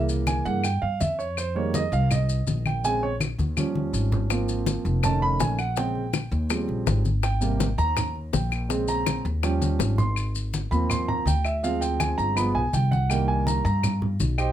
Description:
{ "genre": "Afro-Cuban jazz", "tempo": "164 BPM", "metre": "4/4", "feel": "straight", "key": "Ab major", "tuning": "A4 = 440 Hz", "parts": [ { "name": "warm grand piano", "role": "accompaniment", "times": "0.0-14.5 s", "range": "C3 to C6", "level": "-26 LUFS", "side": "right 3 dB", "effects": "none" }, { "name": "upright bass", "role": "bass", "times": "0.0-14.5 s", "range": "F1 to G2", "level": "-25 LUFS", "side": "left 1 dB", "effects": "none" }, { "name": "congas", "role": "percussion", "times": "0.1-14.4 s", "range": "none", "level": "-30 LUFS", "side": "left 1 dB", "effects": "none" }, { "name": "maracas", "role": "percussion", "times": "0.1-14.5 s", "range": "none", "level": "-36 LUFS", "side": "left 7 dB", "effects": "none" }, { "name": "claves", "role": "percussion", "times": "0.3-14.5 s", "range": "none", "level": "-33 LUFS", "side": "left 8 dB", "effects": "none" }, { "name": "bongos", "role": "percussion", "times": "4.3-10.2 s", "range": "none", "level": "-31 LUFS", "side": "left 10 dB", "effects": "none" } ], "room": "light reverb", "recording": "close, detailed microphones", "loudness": "-22 LUFS", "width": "side -11 dB against mid", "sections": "0.0-10.2 A section; 10.2-14.5 A section", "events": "grand piano solo 0.0-14.5; drum fill 3.4-4.3, 9.6-10.2", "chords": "0.0 C7b9; 1.4 Fm11; 2.8 Bbm7; 3.6 Eb9; 4.3 Ab69; 5.0 Faug7; 5.8 Bbm7; 6.5 Eb13; 7.2 Abmaj9; 8.7 Bbm7; 9.4 Eb9; 10.2 Ab6; 11.6 Dm7b5; 12.4 G7b9; 13.1 Cm7", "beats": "0.27 0.64 1.00 | 1.37 1.74 2.11 2.47 | 2.84 3.21 3.57 3.94 | 4.31 4.67 5.04 5.41 | 5.77 6.14 6.50 6.87 | 7.24 7.60 7.97 8.34 | 8.70 9.07 9.43 9.80 | 10.17 10.53 10.90 11.27 | 11.63 12.00 12.37 12.73 | 13.10 13.47 13.83 14.20" }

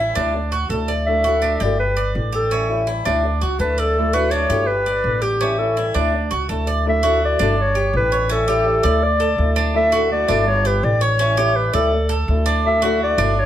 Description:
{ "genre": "latin", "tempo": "166 BPM", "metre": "4/4", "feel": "straight", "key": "D major", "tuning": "A4 = 444 Hz", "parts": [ { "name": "mellow clarinet", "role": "melody", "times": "0.0-13.5 s", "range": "G4 to E5", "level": "-20 LUFS", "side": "equal", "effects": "none" }, { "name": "fingerpicked old ladder-braced acoustic guitar", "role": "accompaniment", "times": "0.0-13.4 s", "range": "D3 to G4", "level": "-23 LUFS", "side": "left 3 dB", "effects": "none" }, { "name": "Cuban tres", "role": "arpeggios", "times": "0.0-13.5 s", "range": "C#4 to D5", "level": "-23 LUFS", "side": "right 4 dB", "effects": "none" }, { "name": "upright bass", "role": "bass", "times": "0.0-13.5 s", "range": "G1 to D2", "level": "-22 LUFS", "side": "equal", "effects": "none" } ], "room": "moderate large studio reverb, RT60 0.9 s", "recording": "none", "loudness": "-16 LUFS", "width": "side -11 dB against mid", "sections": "0.0-6.9 A section; 6.9-13.5 B section", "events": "none", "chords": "0.3 Dadd9; 1.8 G; 2.5 A7; 3.2 Dadd9; 4.7 G; 5.4 A7; 6.1 Dadd9; 7.6 G; 8.3 A7; 9.0 Dadd9; 10.5 G; 11.2 A7; 11.9 Dadd9", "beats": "0.34 0.70 | 1.07 1.43 1.79 2.15 | 2.51 2.88 3.24 3.60 | 3.96 4.32 4.68 5.05 | 5.41 5.77 6.13 6.49 | 6.86 7.22 7.58 7.94 | 8.30 8.66 9.02 9.38 | 9.75 10.11 10.47 10.83 | 11.19 11.55 11.91 12.28 | 12.64 13.00 13.36" }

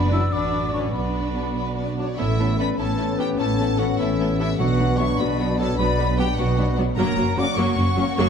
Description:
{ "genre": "cinematic", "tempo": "100 BPM (dotted quarters)", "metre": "6/8", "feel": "straight", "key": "B minor", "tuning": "A4 = 440 Hz", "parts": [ { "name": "warm symphonic violin section", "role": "melody", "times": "0.0-8.3 s", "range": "B4 to D6", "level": "-30 LUFS", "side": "left 4 dB", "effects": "none" }, { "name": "hollow concert flute", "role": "second line", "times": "0.0-8.3 s", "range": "F#4 to E6", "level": "-31 LUFS", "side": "left 2 dB", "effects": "none" }, { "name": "warm clarinet", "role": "second line", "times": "0.0-1.9 s", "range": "D5", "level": "-34 LUFS", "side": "left 4 dB", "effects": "none" }, { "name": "warm symphonic violin section", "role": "second line", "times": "0.0-8.3 s", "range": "C#4 to A4", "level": "-35 LUFS", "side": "left 2 dB", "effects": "none" }, { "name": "rich symphonic viola section", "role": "accompaniment", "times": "0.0-8.3 s", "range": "F#3 to D4", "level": "-27 LUFS", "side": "right 2 dB", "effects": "none" }, { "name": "concert harp", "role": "arpeggios", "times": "0.0-8.3 s", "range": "F#2 to F#4", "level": "-30 LUFS", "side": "left 9 dB", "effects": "none" }, { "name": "warm symphonic cello section", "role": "bass", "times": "0.0-8.2 s", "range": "F#2 to E4", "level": "-27 LUFS", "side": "right 3 dB", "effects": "none" }, { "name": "warm symphonic double bass section", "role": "bass", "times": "0.0-8.2 s", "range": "F#1 to B1", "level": "-25 LUFS", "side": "right 2 dB", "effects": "none" }, { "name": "warm French horn section", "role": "sustained chords", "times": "0.1-8.0 s", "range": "F#3 to D4", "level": "-27 LUFS", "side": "left 5 dB", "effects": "none" }, { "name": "mellow cor anglais", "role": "second line", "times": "2.0-8.3 s", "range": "D4 to D5", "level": "-30 LUFS", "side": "right 2 dB", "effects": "none" } ], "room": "moderate scoring stage reverb, RT60 2.0 s", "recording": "none", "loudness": "-19 LUFS", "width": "side -7 dB against mid", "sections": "0.0-2.2 A section; 2.2-8.3 B section", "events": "none", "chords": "0.0 Bm/F#; 0.9 Bm; 2.2 Aadd9; 4.6 Bm; 7.0 F#", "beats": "0.32 | 0.94 1.56 | 2.19 2.80 | 3.40 4.00 | 4.60 5.20 | 5.79 6.39 | 6.99 7.58 | 8.18" }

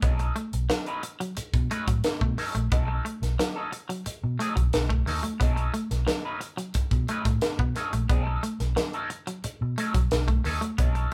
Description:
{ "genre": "funk", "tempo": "89 BPM", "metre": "4/4", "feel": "straight", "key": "B mixolydian", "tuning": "A4 = 439 Hz", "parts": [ { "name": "electric guitar at the edge of break-up", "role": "accompaniment", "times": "0.0-11.1 s", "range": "F#3 to B4", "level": "-36 LUFS", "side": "equal", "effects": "wah" }, { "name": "twangy electric guitar", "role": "riff", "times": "0.0-11.0 s", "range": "F#3 to B3", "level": "-36 LUFS", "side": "equal", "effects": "none" }, { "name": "vintage muted fingered electric bass", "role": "bass", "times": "0.0-11.0 s", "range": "A#1 to B2", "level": "-30 LUFS", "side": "equal", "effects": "none" }, { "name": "crisp fusion drum kit", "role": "drums", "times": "0.0-11.1 s", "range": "hi-hat, kick drum, snare drum", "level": "-30 LUFS", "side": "equal", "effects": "none" } ], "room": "moderate studio ambience, RT60 0.5 s", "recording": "band playing live in one room", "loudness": "-27 LUFS", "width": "mono", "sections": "0.0-11.1 A section", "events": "none", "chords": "0.0 B9", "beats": "| 0.03 0.70 1.37 2.04 | 2.72 3.39 4.06 4.73 | 5.41 6.08 6.75 7.42 | 8.10 8.77 9.44 10.11 | 10.79" }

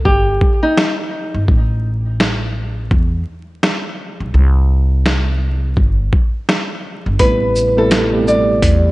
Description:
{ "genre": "hip hop, boom-bap hip-hop", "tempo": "84 BPM", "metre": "4/4", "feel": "swing 62% on 16ths", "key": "unclear", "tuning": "A4 = 443 Hz", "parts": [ { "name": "nylon-string guitar", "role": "melody", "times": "0.1-0.9, 7.2-8.9 s", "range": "D#4 to D5", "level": "-16 LUFS", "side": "equal", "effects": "high-pass filter, low-pass filter, tape echo" }, { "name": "upright bass", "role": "bass", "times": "0.1-8.9 s", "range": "G1 to E2", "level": "-16 LUFS", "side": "equal", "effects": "none" }, { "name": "boom bap sampler-style drum kit", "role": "drums", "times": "0.1-8.8 s", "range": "hi-hat, kick drum, shaker, snare drum", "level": "-16 LUFS", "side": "equal", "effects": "none" }, { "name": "tine electric piano", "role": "accompaniment", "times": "7.2-8.9 s", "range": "B2 to G4", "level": "-18 LUFS", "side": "right 1 dB", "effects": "medium stereo tremolo, cassette tape, high-pass filter, low-pass filter" } ], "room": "light reverb", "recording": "vinyl crackle, nothing above 10.8 kHz", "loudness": "-13 LUFS", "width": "side -20 dB against mid", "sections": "0.0-8.9 A section", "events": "break 0.0-7.2", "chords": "0.0 N.C.; 4.3 C5; 7.2 Am9", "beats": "0.06 0.77 | 1.48 2.20 2.91 3.63 | 4.34 5.05 5.77 6.48 | 7.20 7.91 8.63" }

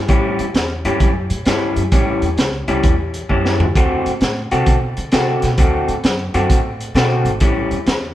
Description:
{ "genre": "electric blues shuffle", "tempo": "131 BPM", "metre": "4/4", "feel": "swing 66% on 8ths", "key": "A mixolydian", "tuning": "A4 = 440 Hz", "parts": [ { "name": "upright bass", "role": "bass", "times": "0.0-8.1 s", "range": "G#1 to D3", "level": "-22 LUFS", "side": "equal", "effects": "none" }, { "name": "electric guitar through a small old amp", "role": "riff", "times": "0.1-7.8 s", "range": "A2 to F#4", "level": "-19 LUFS", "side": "left 1 dB", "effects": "spring reverb" }, { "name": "crunchy breakbeat drum kit", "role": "drums", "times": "0.1-8.0 s", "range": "hi-hat, kick drum, snare drum, toms", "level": "-17 LUFS", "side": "equal", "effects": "none" } ], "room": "light reverb", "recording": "band playing live in one room", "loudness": "-14 LUFS", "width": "side -13 dB against mid", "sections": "0.0-8.1 A section", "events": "drum fill 3.3-3.8", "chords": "0.0 A7; 3.8 D7; 7.4 A7", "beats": "| 0.10 0.55 1.01 1.47 | 1.93 2.38 2.84 3.30 | 3.76 4.21 4.67 5.13 | 5.59 6.04 6.50 6.96 | 7.42 7.87" }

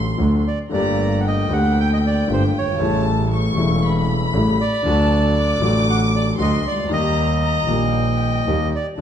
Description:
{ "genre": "tango", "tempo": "116 BPM", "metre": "4/4", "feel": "rubato", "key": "unclear", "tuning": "A4 = 440 Hz", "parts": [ { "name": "warm chamber violin section", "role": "second line", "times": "0.0-9.0 s", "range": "F#5 to D6", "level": "-26 LUFS", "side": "left 2 dB", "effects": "none" }, { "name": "warm concert grand piano", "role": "accompaniment", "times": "0.0-9.0 s", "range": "E1 to G4", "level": "-21 LUFS", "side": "left 3 dB", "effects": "none" }, { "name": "rich double bass", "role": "bass", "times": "0.0-9.0 s", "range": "E1 to Eb2", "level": "-20 LUFS", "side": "right 2 dB", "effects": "none" }, { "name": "bandoneon", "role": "melody", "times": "0.5-8.9 s", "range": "C5 to G5", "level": "-23 LUFS", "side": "right 1 dB", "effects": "none" } ], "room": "wet large studio reverb, RT60 1.2 s", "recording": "dark, warm production, nothing above 10.4 kHz", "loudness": "-16 LUFS", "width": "side -9 dB against mid", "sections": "0.0-9.0 A section", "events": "none", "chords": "0.0 D; 0.7 Gmadd9; 2.8 A7; 4.8 D; 6.9 Eb", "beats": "0.19 | 0.72 1.24 1.76 2.28 | 2.80 3.31 3.83 4.34 | 4.85 5.36 5.87 6.39 | 6.90 7.42 7.94 8.46 | 8.99" }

